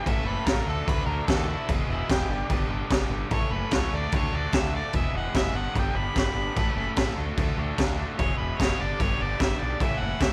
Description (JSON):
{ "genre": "garage rock duo or trio", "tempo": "148 BPM", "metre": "4/4", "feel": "straight", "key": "unclear", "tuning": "A4 = 440 Hz", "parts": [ { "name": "warm harmonica", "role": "melody", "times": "0.0-10.3 s", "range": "E4 to B5", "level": "-34 LUFS", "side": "equal", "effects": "overdrive" }, { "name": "raw garage guitar", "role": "riff", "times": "0.0-10.3 s", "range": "E2 to A4", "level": "-35 LUFS", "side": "equal", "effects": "overdrive" }, { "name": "growling picked electric bass", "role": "bass", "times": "0.1-10.3 s", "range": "E1 to D#2", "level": "-33 LUFS", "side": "equal", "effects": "overdrive" }, { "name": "raw garage drum kit", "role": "drums", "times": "0.1-10.3 s", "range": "crash cymbal, kick drum, snare drum", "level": "-29 LUFS", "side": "equal", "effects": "none" } ], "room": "little or no reverb", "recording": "none", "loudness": "-26 LUFS", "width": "mono", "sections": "0.0-10.3 A section", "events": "harmonica solo 0.0-10.3", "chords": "0.1 A; 0.7 D; 1.7 E; 2.3 G; 3.3 A; 3.9 D; 4.9 E; 5.6 G; 6.6 A; 7.2 D; 8.2 E; 8.8 G; 9.8 A", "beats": "| 0.06 0.47 0.88 1.28 | 1.69 2.10 2.50 2.91 | 3.32 3.72 4.13 4.54 | 4.94 5.35 5.75 6.16 | 6.56 6.97 7.37 7.78 | 8.18 8.59 8.99 9.40 | 9.80 10.21" }